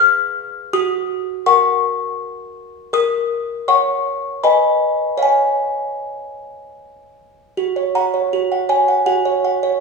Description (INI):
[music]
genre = classical, lullaby for music box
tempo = 80 BPM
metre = 3/4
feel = rubato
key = F# major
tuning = A4 = 440 Hz
[part]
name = music box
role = solo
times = 0.0-9.8 s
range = F#4 to F6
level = -15 LUFS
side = left 1 dB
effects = none
[sound]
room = wet recital hall reverb, RT60 1.6 s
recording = recorded in a church or concert hall, studio reverb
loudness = -15 LUFS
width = side -3 dB against mid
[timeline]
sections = 0.0-7.6 A section; 7.6-9.8 B section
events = none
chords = 0.0 F(b5, no3); 0.7 F#; 2.9 F#/A#; 4.4 G#m/B; 5.2 C#; 7.6 F#